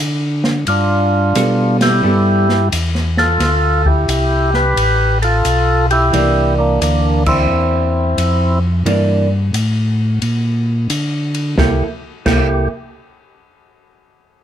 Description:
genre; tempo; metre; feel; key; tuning
soul jazz organ trio; 88 BPM; 4/4; swing 66% on 8ths; C mixolydian; A4 = 440 Hz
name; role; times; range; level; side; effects
mellow tonewheel organ; bass; 0.0-12.7 s; A1 to D3; -16 LUFS; equal; slow rotary speaker
open jazz drum kit; drums; 0.4-12.5 s; crash cymbal, hi-hat, kick drum, ride cymbal, snare drum; -22 LUFS; left 1 dB; none
percussive tonewheel organ; melody; 0.7-12.7 s; Bb3 to B4; -16 LUFS; equal; slow rotary speaker, plate reverb
hollow-body jazz guitar; accompaniment; 1.4-12.7 s; E3 to A4; -18 LUFS; right 2 dB; none
room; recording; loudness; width
light reverb; none; -13 LUFS; side -10 dB against mid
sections
0.0-11.6 A section; 11.6-14.3 B section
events
band accent 1.7-2.0, 7.1-7.5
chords
0.0 N.C.; 0.7 G9; 6.1 C9; 11.6 C6

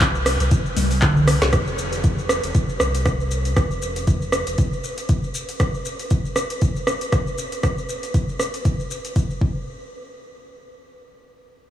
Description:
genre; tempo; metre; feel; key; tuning
afro house; 118 BPM; 4/4; swing 56% on 16ths; unclear; A4 = 440 Hz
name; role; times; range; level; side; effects
warm sub bass; bass; 0.0-4.6 s; F1 to C2; -24 LUFS; equal; sidechain pumping
afro-pop drum kit; drums; 0.0-9.4 s; handclaps, hi-hat, rim click, shaker, snare drum, toms; -23 LUFS; equal; overdrive
electronic kick drum; drums; 0.0-9.5 s; none; -21 LUFS; equal; overdrive
room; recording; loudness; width
moderate huge ambient reverb, RT60 7.0 s; dreamy mix soaked in reverb, small room ambience; -19 LUFS; side -11 dB against mid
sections
0.0-1.5 A section; 1.5-9.7 B section; 9.7-11.7 C section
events
drop 0.0-1.5; drum fill 0.8-1.5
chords
none

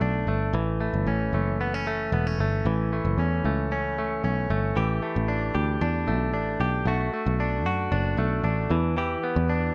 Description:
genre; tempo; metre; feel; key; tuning
jangly indie pop; 114 BPM; 4/4; straight; unclear; A4 = 440 Hz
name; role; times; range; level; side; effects
direct-recorded clean electric guitar; arpeggios; 0.0-9.7 s; E3 to G4; -29 LUFS; equal; none
picked electric bass; bass; 0.0-9.7 s; E1 to F#2; -28 LUFS; equal; none
room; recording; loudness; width
light reverb; dark, warm production; -26 LUFS; mono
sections
0.0-4.8 A section; 4.8-9.7 B section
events
none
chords
0.0 Bm7; 0.5 A6; 4.8 A7sus4; 6.9 Bm7; 8.7 Em7

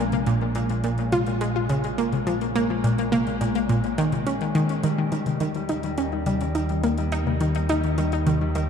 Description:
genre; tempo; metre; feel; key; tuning
ambient, sequencer-driven space music; 105 BPM; 4/4; straight; Bb dorian; A4 = 439 Hz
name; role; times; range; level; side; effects
concert harp; arpeggios; 0.0-8.7 s; G3 to Bb4; -31 LUFS; left 5 dB; auto-pan, ping-pong delay
analog pluck; riff; 0.0-8.6 s; Bb2 to F4; -23 LUFS; equal; chorus, ping-pong delay
analog drone; bass; 0.0-8.7 s; Bb1 to Eb2; -28 LUFS; equal; chorus, tube saturation
soft vintage rhythm box; percussion; 0.1-8.7 s; hi-hat, toms; -34 LUFS; left 4 dB; ping-pong delay
room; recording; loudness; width
wet cathedral reverb, RT60 5.8 s; in a vast, echoing space; -21 LUFS; side -7 dB against mid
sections
0.0-8.7 A section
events
none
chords
0.0 Bbm7; 4.8 Eb7

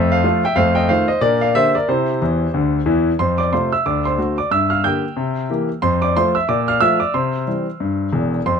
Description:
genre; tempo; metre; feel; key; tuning
jazz, stride piano; 182 BPM; 4/4; swing 59% on 8ths; F major; A4 = 440 Hz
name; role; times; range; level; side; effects
clear grand piano; solo; 0.0-8.6 s; E1 to G6; -15 LUFS; equal; none
room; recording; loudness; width
light reverb; close, detailed microphones; -15 LUFS; side -6 dB against mid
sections
0.0-3.2 A section; 3.2-8.6 B section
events
grand piano fill 2.2-3.2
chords
0.0 F; 0.6 F7; 1.2 Bb6; 1.9 C; 3.2 F; 3.8 D7; 4.5 Gm; 5.2 C7; 5.8 F; 6.5 Bbmaj7; 7.1 C

